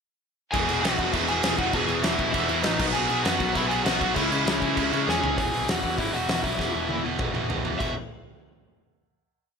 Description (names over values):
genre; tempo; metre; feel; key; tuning
punk rock; 198 BPM; 4/4; straight; E major; A4 = 440 Hz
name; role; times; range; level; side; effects
crunchy overdriven guitar; melody; 0.5-7.9 s; D#4 to G#5; -28 LUFS; left 2 dB; none
crunchy overdriven guitar; riff; 0.5-7.9 s; E2 to C#4; -29 LUFS; right 14 dB; none
raw garage guitar; riff; 0.5-7.9 s; E2 to C#4; -30 LUFS; left 14 dB; overdrive
scooped high-gain guitar; riff; 0.5-5.4 s; E2 to C#4; -31 LUFS; right 1 dB; distortion
overdriven picked electric bass; bass; 0.5-7.9 s; E1 to C#3; -34 LUFS; equal; none
big rock drum kit; drums; 0.5-7.9 s; crash cymbal, hi-hat, kick drum, snare drum, toms; -28 LUFS; right 1 dB; none
room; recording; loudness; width
light reverb; none; -22 LUFS; side -6 dB against mid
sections
0.5-5.4 riff; 5.4-7.8 outro; 7.8-9.0 final chord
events
drum fill 5.1-5.4, 6.6-7.8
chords
0.5 E; 2.8 B5; 4.2 C#m; 5.4 E; 7.8 E5